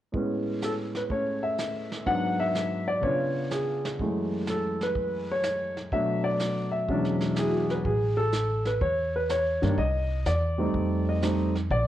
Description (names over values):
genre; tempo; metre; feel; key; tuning
jazz piano trio; 124 BPM; 4/4; swing 68% on 8ths; A major; A4 = 436 Hz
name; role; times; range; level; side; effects
warm concert grand piano; melody; 0.1-11.9 s; E2 to F#5; -26 LUFS; equal; none
vintage brush drum kit; drums; 0.1-11.9 s; brushed snare drum, hi-hat, kick drum, snare drum; -36 LUFS; right 2 dB; none
upright bass; bass; 7.8-11.9 s; A1 to G2; -28 LUFS; equal; transformer saturation
room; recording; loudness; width
moderate large studio reverb, RT60 1.4 s; worn, warbling old tape, cassette tape, warbly pitch drift; -25 LUFS; side -12 dB against mid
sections
0.1-7.9 A section; 7.9-11.9 B section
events
none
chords
0.1 Amaj9; 2.1 G#m7b5; 3.0 C#7b9; 4.0 F#m9; 5.9 Bm7; 6.9 E13; 7.9 A; 9.8 Cmadd9; 10.7 F9